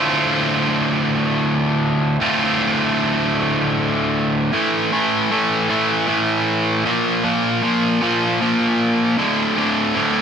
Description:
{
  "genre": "rock",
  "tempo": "52 BPM (dotted quarters)",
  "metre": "6/8",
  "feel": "straight",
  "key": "D minor",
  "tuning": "A4 = 439 Hz",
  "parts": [
    { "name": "distorted electric guitar", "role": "solo", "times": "0.0-10.2 s", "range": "D2 to F4", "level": "-16 LUFS", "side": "equal", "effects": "distortion" }
  ],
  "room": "moderate lush hall reverb, RT60 2.6 s",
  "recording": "none",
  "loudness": "-16 LUFS",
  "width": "side -7 dB against mid",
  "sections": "0.0-4.5 A section; 4.5-10.2 B section",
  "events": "build-up 4.5-10.2",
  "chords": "0.0 Dm7; 4.5 A5; 6.9 Bb5; 9.2 D5"
}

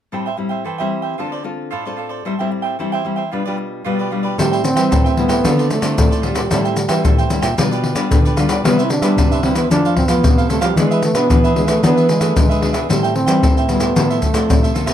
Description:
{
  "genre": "samba and choro",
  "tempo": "113 BPM",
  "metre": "4/4",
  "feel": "straight",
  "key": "A minor",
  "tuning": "A4 = 440 Hz",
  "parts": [
    { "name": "cavaquinho", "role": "accompaniment", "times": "0.1-14.9 s", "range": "D4 to G5", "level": "-24 LUFS", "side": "right 5 dB", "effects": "none" },
    { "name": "nylon-string guitar", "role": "accompaniment", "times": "0.1-14.9 s", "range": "F2 to A4", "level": "-22 LUFS", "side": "left 3 dB", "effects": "none" },
    { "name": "mellow trombone", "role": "melody", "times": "4.4-14.9 s", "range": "G3 to E4", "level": "-19 LUFS", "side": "right 1 dB", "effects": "none" },
    { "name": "nylon-string guitar", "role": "bass", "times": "4.4-14.9 s", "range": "A2 to B3", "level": "-20 LUFS", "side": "right 1 dB", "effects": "none" },
    { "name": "maracas, surdo and pandeiro", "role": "percussion", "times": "4.4-14.9 s", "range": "none", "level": "-16 LUFS", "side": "left 1 dB", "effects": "none" }
  ],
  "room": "moderate studio reverb, RT60 0.6 s",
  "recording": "none",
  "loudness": "-14 LUFS",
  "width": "side -10 dB against mid",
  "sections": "0.1-4.4 A section; 4.4-14.9 B section",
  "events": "none",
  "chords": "0.1 Am7; 1.2 Dm7; 2.3 Am7; 3.3 G7/B; 4.4 Am7; 5.5 Dm7; 6.5 Am7; 7.6 G7/B; 8.6 Cmaj7; 9.7 Fmaj7; 10.8 E7; 12.9 Am7; 14.0 Fmaj7/A"
}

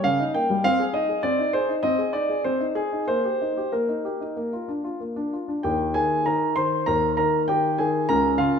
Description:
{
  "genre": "classical-period piano sonatina",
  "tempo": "97 BPM",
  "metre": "4/4",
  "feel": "uneven beats, rubato",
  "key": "Eb major",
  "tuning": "A4 = 440 Hz",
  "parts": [
    { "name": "warm concert grand piano", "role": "solo", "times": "0.0-8.6 s", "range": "Db2 to C6", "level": "-21 LUFS", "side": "equal", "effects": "none" }
  ],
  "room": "wet recital hall reverb, RT60 1.7 s",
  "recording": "nothing above 10.5 kHz",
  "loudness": "-21 LUFS",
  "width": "side -6 dB against mid",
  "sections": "0.0-5.6 A section; 5.6-8.6 B section",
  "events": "none",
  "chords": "0.0 Eb7/Db; 0.6 Ab/C; 3.1 Eb/Bb; 4.4 Bb; 5.6 Eb; 8.1 Db6"
}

